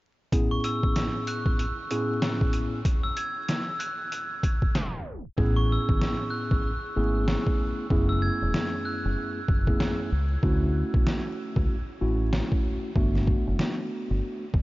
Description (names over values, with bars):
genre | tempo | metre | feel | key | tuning
hip hop, boom-bap hip-hop | 95 BPM | 4/4 | swing 61% on 16ths | A major | A4 = 441 Hz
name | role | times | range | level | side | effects
mellow tine electric piano | accompaniment | 0.3-14.4 s | F#2 to G#4 | -30 LUFS | equal | slow stereo tremolo, cassette tape, high-pass filter, low-pass filter
trip hop sampler-style drum kit | drums | 0.3-14.6 s | hi-hat, kick drum, snare drum | -27 LUFS | equal | overdrive, vintage 12-bit sampler grit
glockenspiel with brass mallets | melody | 0.5-9.3 s | C#6 to G#6 | -34 LUFS | equal | high-pass filter, low-pass filter, diffuse ambient delay
deep dub fingered electric bass | bass | 5.4-14.6 s | E1 to D2 | -26 LUFS | equal | none
room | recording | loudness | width
light reverb | vinyl crackle, tape stop, nothing above 7.5 kHz | -24 LUFS | side -19 dB against mid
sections
0.3-5.4 A section; 5.4-14.6 B section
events
break 2.9-5.4; tape stop 4.7-5.4; hi-hats muted 5.4-14.6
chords
0.3 Amaj7; 2.9 N.C.; 5.4 Amaj7; 7.9 F#m11; 10.4 Dmaj9; 13.0 Gmaj7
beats
| 0.33 0.96 1.59 2.22 | 2.85 3.48 4.12 4.75 | 5.38 6.01 6.64 7.27 | 7.91 8.54 9.17 9.80 | 10.43 11.06 11.70 12.33 | 12.96 13.59 14.22